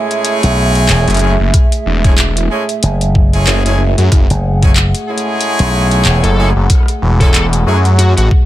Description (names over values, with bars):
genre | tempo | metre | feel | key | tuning
glitch hop | 93 BPM | 4/4 | swing 57% on 16ths | F# minor | A4 = 440 Hz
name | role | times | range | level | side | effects
dark analog pad | sustained chords | 0.0-8.5 s | A3 to F#5 | -21 LUFS | right 3 dB | chorus, sidechain pumping
brilliant horn section | stabs | 0.0-7.8 s | G#3 to G#4 | -18 LUFS | equal | sidechain pumping, ping-pong delay
drum and bass drum kit | drums | 0.1-8.3 s | handclaps, hi-hat, rim click | -18 LUFS | equal | none
slap bass with an envelope filter | bass | 0.4-6.2 s | E1 to B1 | -12 LUFS | equal | tube saturation
phased detuned saw bass | bass | 1.1-8.3 s | E1 to F#2 | -11 LUFS | equal | phaser, tube saturation
electronic kick drum | drums | 1.5-8.5 s | none | -10 LUFS | equal | none
bluesy overdriven lead guitar | melody | 6.2-8.3 s | F#4 to A4 | -21 LUFS | equal | distortion, ping-pong delay
room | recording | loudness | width
little or no reverb | none | -9 LUFS | side -14 dB against mid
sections
0.0-8.5 A section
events
none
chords
0.0 F#m9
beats
0.25 0.89 | 1.54 2.18 2.83 3.47 | 4.12 4.76 5.41 6.05 | 6.70 7.34 7.99